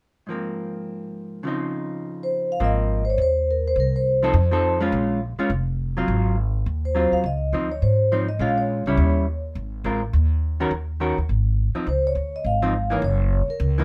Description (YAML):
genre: jazz, small-group swing and bop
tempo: 207 BPM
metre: 4/4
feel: swing 59% on 8ths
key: Ab major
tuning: A4 = 440 Hz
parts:
  - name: vintage hollow-body jazz guitar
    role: accompaniment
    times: 0.3-13.8 s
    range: Ab2 to Bb4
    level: -27 LUFS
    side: equal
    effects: none
  - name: vibraphone with soft mallets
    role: melody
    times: 2.2-4.8, 6.9-9.4, 11.9-13.8 s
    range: Bb4 to F5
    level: -26 LUFS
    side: equal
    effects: none
  - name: upright bass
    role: bass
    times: 2.6-13.8 s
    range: F1 to Ab2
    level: -25 LUFS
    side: equal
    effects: none
room: light reverb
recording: none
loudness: -23 LUFS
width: mono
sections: 0.3-2.6 A section; 2.6-11.9 B section; 11.9-13.8 C section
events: none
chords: 0.3 Ab69; 1.4 Dbmaj9; 2.6 Ab69; 3.8 Cm; 4.3 F7; 4.9 Bbm7; 6.1 Ab6; 7.2 Dbmaj9; 8.4 Bbm7; 9.0 Eb7b9; 9.6 Ab69; 10.7 Ebm7; 11.3 Ab; 11.9 Dbadd9; 13.0 Gb